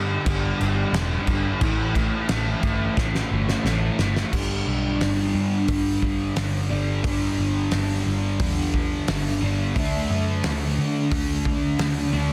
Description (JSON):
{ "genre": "rock, shoegaze and dream pop", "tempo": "88 BPM", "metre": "4/4", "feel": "straight", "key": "unclear", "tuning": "A4 = 442 Hz", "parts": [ { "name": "fuzz guitar", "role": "riff", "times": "0.0-12.3 s", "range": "G2 to D4", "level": "-27 LUFS", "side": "equal", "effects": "distortion, lush chorus" }, { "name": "vintage muted picked electric bass", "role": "bass", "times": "0.0-12.3 s", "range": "E1 to D3", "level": "-28 LUFS", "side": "equal", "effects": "none" }, { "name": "loose indie drum kit", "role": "drums", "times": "0.3-12.0 s", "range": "crash cymbal, hi-hat, kick drum, snare drum", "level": "-29 LUFS", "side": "equal", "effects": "none" } ], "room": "light reverb, small room ambience", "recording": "dense, heavily limited modern master", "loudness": "-23 LUFS", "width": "mono", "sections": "0.0-4.3 A section; 4.3-12.3 B section", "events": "drum fill 3.0-4.3", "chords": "0.0 G5; 1.6 A5; 4.3 G5; 9.8 D" }